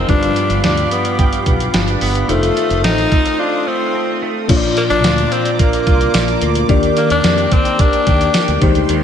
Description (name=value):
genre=1980s-style pop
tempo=109 BPM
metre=4/4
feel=straight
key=Bb major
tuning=A4 = 440 Hz
part: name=raspy tenor saxophone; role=melody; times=0.0-8.6 s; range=A3 to Eb4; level=-18 LUFS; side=left 2 dB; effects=tape echo, slapback echo
part: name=FM electric piano with soft pad layer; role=accompaniment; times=0.0-9.0 s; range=G2 to D5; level=-20 LUFS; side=left 5 dB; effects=chorus, tremolo, slapback echo
part: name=brassy analog pad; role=sustained chords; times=0.0-9.0 s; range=Eb3 to Eb6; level=-24 LUFS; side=right 2 dB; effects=chorus, phaser
part: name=direct-recorded clean electric guitar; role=riff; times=0.0-9.0 s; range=Eb3 to Ab4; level=-22 LUFS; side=right 5 dB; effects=ensemble chorus, tape echo, slapback echo
part: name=mellow fretless electric bass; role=bass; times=0.0-9.0 s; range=F1 to F2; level=-19 LUFS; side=right 1 dB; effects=none
part: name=clean 12-bit digital drum machine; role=drums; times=0.1-9.0 s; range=crash cymbal, hi-hat, kick drum, snare drum, tambourine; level=-17 LUFS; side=equal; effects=none
room=moderate lush hall reverb, RT60 2.5 s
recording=big arena sound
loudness=-12 LUFS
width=side -8 dB against mid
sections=0.0-4.5 A section; 4.5-9.0 B section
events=break 3.4-4.5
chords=0.1 G7; 2.3 F7; 4.5 Bb; 6.7 Ebmaj7